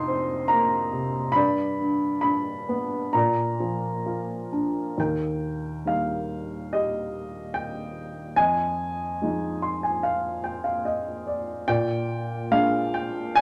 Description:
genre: classical, lyrical solo piano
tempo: 65-74 BPM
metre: 4/4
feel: rubato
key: Eb major from 5.0 s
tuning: A4 = 438 Hz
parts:
  - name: warm upright piano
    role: solo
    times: 0.0-13.4 s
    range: Eb2 to C6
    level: -26 LUFS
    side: equal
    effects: none
room: moderate small room reverb, RT60 0.6 s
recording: none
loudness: -26 LUFS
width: mono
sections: 0.0-5.0 A section; 5.0-13.4 B section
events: upright piano fill 9.2-11.7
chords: 0.0 F7sus4; 1.4 G; 3.1 Bb; 5.0 Eb; 8.4 Fm7; 11.7 Bb7

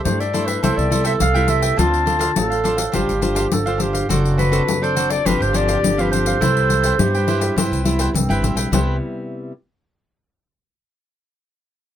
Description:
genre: samba and choro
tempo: 104 BPM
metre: 4/4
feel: straight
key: C major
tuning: A4 = 442 Hz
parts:
  - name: mellow clarinet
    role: melody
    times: 0.0-8.1 s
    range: B4 to A5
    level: -21 LUFS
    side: left 1 dB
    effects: none
  - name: warm clarinet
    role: second line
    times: 0.0-9.0 s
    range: C4 to A4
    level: -24 LUFS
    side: right 4 dB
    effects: none
  - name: nylon-string guitar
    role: accompaniment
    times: 0.0-9.5 s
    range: G2 to C5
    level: -24 LUFS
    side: left 2 dB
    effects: none
  - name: upright bass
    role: bass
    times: 0.1-9.0 s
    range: F#1 to G2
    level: -21 LUFS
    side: equal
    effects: none
  - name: pandeiro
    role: percussion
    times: 0.1-8.9 s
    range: none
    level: -23 LUFS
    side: left 4 dB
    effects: none
  - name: cavaquinho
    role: accompaniment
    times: 0.2-9.0 s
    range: D4 to G5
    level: -26 LUFS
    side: right 3 dB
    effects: none
room: light reverb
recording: close, detailed microphones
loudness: -16 LUFS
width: side -10 dB against mid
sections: 0.0-8.7 A section; 8.7-11.0 B section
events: none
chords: 0.0 C69; 0.6 Am9/C; 1.8 Dm7; 3.0 G7sus4; 4.1 D7/F#; 5.3 G7sus4; 6.4 Cmaj7

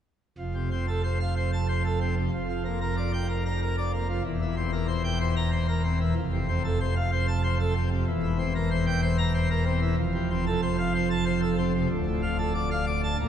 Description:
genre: classical, organ toccata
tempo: 94 BPM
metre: 3/4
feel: straight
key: F major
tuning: A4 = 441 Hz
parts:
  - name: pipe organ, plenum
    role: solo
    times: 0.4-13.3 s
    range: D1 to Bb5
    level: -24 LUFS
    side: equal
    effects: none
room: wet cathedral reverb, RT60 5.7 s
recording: minimal, uncompressed stereo recording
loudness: -24 LUFS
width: side -9 dB against mid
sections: 0.4-13.3 A section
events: none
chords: 0.4 F; 2.3 Gm7/F; 4.2 C7/E; 6.2 F; 8.1 C7/E; 10.0 F; 11.9 Dm

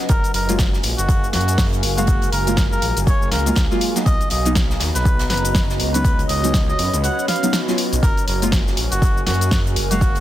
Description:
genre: deep house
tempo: 121 BPM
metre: 4/4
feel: swing 59% on 16ths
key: F# major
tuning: A4 = 440 Hz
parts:
  - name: deep dark ambient pad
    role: sustained chords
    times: 0.0-10.2 s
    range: F#3 to A#5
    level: -31 LUFS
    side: right 1 dB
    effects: chorus, built-in reverb, sidechain pumping
  - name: airy breathy pad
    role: texture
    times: 0.0-10.2 s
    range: B3 to B5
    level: -28 LUFS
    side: equal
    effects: chorus, sidechain pumping
  - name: trumpet with cup mute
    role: melody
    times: 0.1-10.2 s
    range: F#4 to F#5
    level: -25 LUFS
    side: equal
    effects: analog delay
  - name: smooth gliding synth bass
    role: bass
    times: 0.1-10.2 s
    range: F#1 to F#2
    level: -22 LUFS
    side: equal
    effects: sidechain pumping
  - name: big rock drum kit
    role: drums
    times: 0.1-10.2 s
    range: hi-hat, snare drum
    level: -33 LUFS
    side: right 4 dB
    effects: sidechain pumping on hats, high-pass filter on hats, high-pass filter on snare, high-pass filter on room
  - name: deep house drum kit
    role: drums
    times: 0.1-10.2 s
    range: cabasa, hi-hat, snare drum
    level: -24 LUFS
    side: left 1 dB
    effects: overdrive
  - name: electronic kick drum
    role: drums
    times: 0.1-10.1 s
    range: none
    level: -18 LUFS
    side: equal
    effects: overdrive
  - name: deep mellow chord stab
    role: stabs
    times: 0.5-10.2 s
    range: F#3 to E#5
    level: -24 LUFS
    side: equal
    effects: chorus, sidechain pumping
room: little or no reverb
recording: dense, heavily limited modern master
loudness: -16 LUFS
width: side -13 dB against mid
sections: 0.0-10.2 A section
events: kick drops out 7.0-8.0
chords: 0.1 F#maj9; 4.1 Bmaj7; 5.8 C#9sus4; 8.0 F#maj9

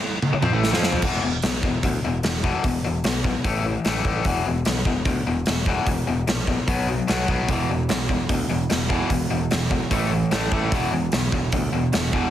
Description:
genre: hard rock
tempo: 148 BPM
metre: 4/4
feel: straight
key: unclear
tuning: A4 = 441 Hz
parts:
  - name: gated 80s drum kit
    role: drums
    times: 0.2-12.2 s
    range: crash cymbal, hi-hat, kick drum, snare drum, toms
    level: -24 LUFS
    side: right 1 dB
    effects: none
  - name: overdriven semi-hollow guitar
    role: riff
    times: 0.3-1.0, 7.5-12.3 s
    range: E2 to F4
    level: -26 LUFS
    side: right 8 dB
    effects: none
  - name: tight distorted guitar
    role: riff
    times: 0.3-12.3 s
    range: E2 to F4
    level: -24 LUFS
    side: left 5 dB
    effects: distortion
  - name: modern bright picked electric bass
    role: bass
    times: 0.3-12.2 s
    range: E1 to F2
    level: -28 LUFS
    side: equal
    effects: none
room: small room ambience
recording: heavily compressed radio sound, multiband compression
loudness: -20 LUFS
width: side -11 dB against mid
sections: 0.0-1.0 A section; 1.0-12.3 B section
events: drum fill 0.2-1.0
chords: 0.0 C5; 1.0 E5; 3.5 A5; 4.3 E5; 6.7 B5; 7.5 E5; 9.9 A5; 10.7 E5

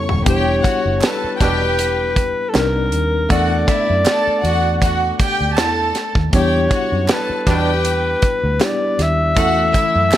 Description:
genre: lush 1970s-style soul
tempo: 79 BPM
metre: 4/4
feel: swing 54% on 16ths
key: E dorian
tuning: A4 = 440 Hz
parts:
  - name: rich chamber violin section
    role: second line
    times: 0.0-10.2 s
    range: E4 to C#6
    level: -21 LUFS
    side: right 1 dB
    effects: none
  - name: tine electric piano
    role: accompaniment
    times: 0.0-10.2 s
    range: E3 to Bb4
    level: -24 LUFS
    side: left 2 dB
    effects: overdrive, fast stereo tremolo
  - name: vintage muted fingered electric bass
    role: bass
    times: 0.1-10.1 s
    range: D#1 to F#2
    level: -20 LUFS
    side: equal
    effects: none
  - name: modern studio drum kit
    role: drums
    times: 0.1-10.2 s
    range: hi-hat, kick drum, snare drum, toms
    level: -19 LUFS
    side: right 1 dB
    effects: none
  - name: warm alto saxophone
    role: melody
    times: 0.3-10.2 s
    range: A4 to E5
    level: -19 LUFS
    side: left 1 dB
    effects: tape echo
  - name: group handclap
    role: percussion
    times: 1.0-10.2 s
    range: none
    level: -32 LUFS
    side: right 4 dB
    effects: none
  - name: bright trombone section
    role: stabs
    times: 1.4-1.6, 7.5-7.7 s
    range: B2 to D4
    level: -23 LUFS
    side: right 4 dB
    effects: none
room: light reverb, studio ambience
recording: none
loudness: -14 LUFS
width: side -12 dB against mid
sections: 0.3-10.2 A section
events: drum fill 0.0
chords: 0.3 Em7; 2.5 Cm9; 3.3 Bm7/E; 9.4 F#m7/E

